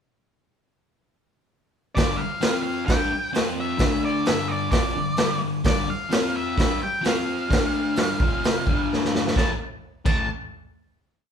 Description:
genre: garage rock duo or trio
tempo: 130 BPM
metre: 4/4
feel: straight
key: A minor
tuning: A4 = 440 Hz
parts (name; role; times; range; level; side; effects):
- octave-fuzz lead guitar; melody; 2.0-10.3 s; D5 to A5; -28 LUFS; left 1 dB; distortion
- fuzz guitar; riff; 2.0-10.2 s; F2 to G4; -26 LUFS; left 2 dB; distortion
- raw garage drum kit; drums; 2.0-10.2 s; crash cymbal, hi-hat, kick drum, snare drum; -23 LUFS; equal; none
room: moderate large studio reverb, RT60 0.9 s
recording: band playing live in one room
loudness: -21 LUFS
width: side -8 dB against mid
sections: 2.0-9.4 pre-chorus; 9.4-11.2 final chord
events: drum fill 8.9-9.4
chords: 2.0 G5; 2.4 F5; 2.9 G5; 3.4 F5; 3.8 D5; 4.3 G5; 6.1 F5; 6.6 G5; 7.0 F5; 7.5 D5; 8.0 G5; 8.2 F5; 8.7 G5; 9.4 A5

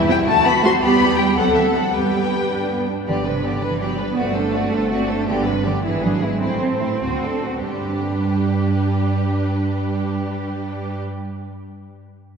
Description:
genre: quick classical-period movement for string orchestra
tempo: 92-109 BPM (dotted quarters)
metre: 6/8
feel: straight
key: G major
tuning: A4 = 440 Hz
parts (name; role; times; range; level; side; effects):
- rich studio violin section; second line; 0.0-11.0 s; C4 to B4; -26 LUFS; left 1 dB; none
- clear symphonic double bass section; bass; 0.0-11.0 s; G1 to G2; -25 LUFS; right 2 dB; none
- rich studio cello section; bass; 0.0-11.0 s; C3 to C4; -23 LUFS; right 3 dB; none
- warm studio violin section; melody; 0.1-11.0 s; G#4 to C6; -24 LUFS; left 4 dB; none
- warm studio viola section; accompaniment; 0.1-11.0 s; G3 to A4; -24 LUFS; right 1 dB; none
room: wet church reverb, RT60 3.0 s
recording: recorded in a church or concert hall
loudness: -17 LUFS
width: side -6 dB against mid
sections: 0.0-3.1 A section; 3.1-7.7 B section; 7.7-10.2 C section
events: slowing down 4.7-7.7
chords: 0.3 D; 0.8 Em; 1.4 D7; 1.9 G; 4.2 D7/G; 5.3 G; 5.8 E7/G#; 6.4 Am; 7.0 D7; 7.7 G

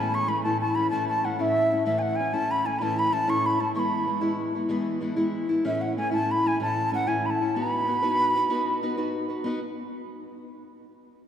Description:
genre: celtic folk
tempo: 127 BPM (dotted quarters)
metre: 12/8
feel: straight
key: B mixolydian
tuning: A4 = 437 Hz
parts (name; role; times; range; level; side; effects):
- wooden flute; melody; 0.0-9.1 s; E5 to C#6; -25 LUFS; equal; none
- fingerpicked steel-string acoustic guitar; accompaniment; 0.0-9.6 s; A2 to B4; -27 LUFS; left 1 dB; none
room: wet cathedral reverb, RT60 4.4 s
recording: recorded in a church or concert hall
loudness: -23 LUFS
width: side -9 dB against mid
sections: 0.0-9.4 A section; 9.4-11.3 B section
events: none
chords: 0.0 A; 3.8 E; 5.7 A; 7.5 B

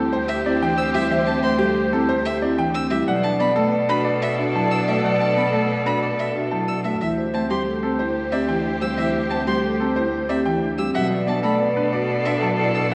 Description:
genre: classical, minimalist pattern music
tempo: 183 BPM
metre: 6/4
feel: straight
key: D mixolydian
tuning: A4 = 440 Hz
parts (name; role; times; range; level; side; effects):
- bright baby grand piano; melody; 0.0-12.9 s; G4 to A5; -29 LUFS; equal; none
- clear oboe; second line; 0.0-12.9 s; G4 to A4; -32 LUFS; equal; none
- folk marimba with medium mallets; accompaniment; 0.0-12.9 s; E3 to D4; -28 LUFS; equal; none
- warm symphonic string section; sustained chords; 0.0-12.9 s; G4 to D5; -32 LUFS; equal; none
- vibraphone with soft mallets; arpeggios; 0.0-12.9 s; C4 to D5; -27 LUFS; equal; none
- rich cello; bass; 0.0-12.9 s; D2 to B2; -29 LUFS; equal; none
- rich violin; arpeggios; 0.3-12.9 s; E5 to E6; -32 LUFS; equal; none
room: wet scoring stage reverb, RT60 1.8 s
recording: worn, warbling old tape, cassette tape, warbly pitch drift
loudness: -21 LUFS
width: mono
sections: 0.0-7.0 A section; 7.0-12.9 B section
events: none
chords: 0.0 D7sus4; 3.1 Bm7; 7.0 D7sus4; 10.9 Bm7

